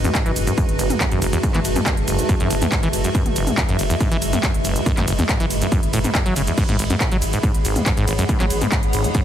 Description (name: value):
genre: driving peak-time techno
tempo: 140 BPM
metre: 4/4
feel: straight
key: unclear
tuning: A4 = 440 Hz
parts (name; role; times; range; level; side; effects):
- acid bass, saw; riff; 0.0-9.2 s; F#1 to F#3; -23 LUFS; equal; sidechain pumping
- warm sub bass; bass; 0.0-9.0 s; F#1 to G#1; -26 LUFS; equal; tube saturation, sidechain pumping, low-pass filter
- metallic inharmonic drone; drone; 0.0-9.2 s; G#2 to G#3; -28 LUFS; left 1 dB; chorus, built-in reverb, sidechain pumping
- techno drum kit; drums; 0.0-9.2 s; crash cymbal, handclaps, hi-hat, ride cymbal, shaker, toms; -24 LUFS; equal; overdrive, studio ambience
- granular cloud pad; texture; 0.0-9.2 s; C#4 to B5; -27 LUFS; equal; built-in reverb, sidechain pumping
- electronic kick drum; drums; 0.1-9.2 s; none; -22 LUFS; equal; overdrive, studio ambience
room: light reverb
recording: heavily compressed radio sound, multiband compression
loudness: -17 LUFS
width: side -10 dB against mid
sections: 0.0-9.2 A section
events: none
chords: 0.0 F#m; 6.6 G#m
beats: 0.15 0.58 1.00 | 1.43 1.86 2.29 2.72 | 3.15 3.58 4.00 4.43 | 4.86 5.29 5.72 6.15 | 6.58 7.00 7.43 7.86 | 8.29 8.72 9.15